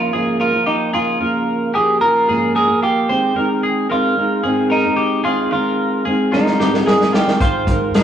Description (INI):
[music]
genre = jangly indie pop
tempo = 111 BPM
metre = 4/4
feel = straight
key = Ab major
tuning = A4 = 440 Hz
[part]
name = semi-hollow electric guitar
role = melody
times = 0.0-8.0 s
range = Eb4 to Bb4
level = -18 LUFS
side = right 1 dB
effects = spring reverb
[part]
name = fingerpicked plugged-in steel-string acoustic guitar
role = accompaniment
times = 0.0-8.0 s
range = Ab2 to C5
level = -19 LUFS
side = right 1 dB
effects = none
[part]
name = twelve-string electric guitar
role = arpeggios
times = 0.0-8.0 s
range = F4 to C5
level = -22 LUFS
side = left 2 dB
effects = none
[part]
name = vintage drum kit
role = drums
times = 6.3-8.0 s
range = hi-hat, kick drum, snare drum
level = -16 LUFS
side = equal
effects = none
[part]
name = hollow-body short-scale fingered electric bass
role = bass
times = 7.4-8.0 s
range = Ab1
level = -24 LUFS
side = equal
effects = none
[sound]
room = moderate stone room reverb, RT60 1.0 s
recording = rough rehearsal-room recording, small room ambience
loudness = -14 LUFS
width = side -9 dB against mid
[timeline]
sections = 0.0-8.0 A section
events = drum fill 6.3-7.4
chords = 0.0 Bbm7/Ab; 3.1 Ab; 7.4 Fm7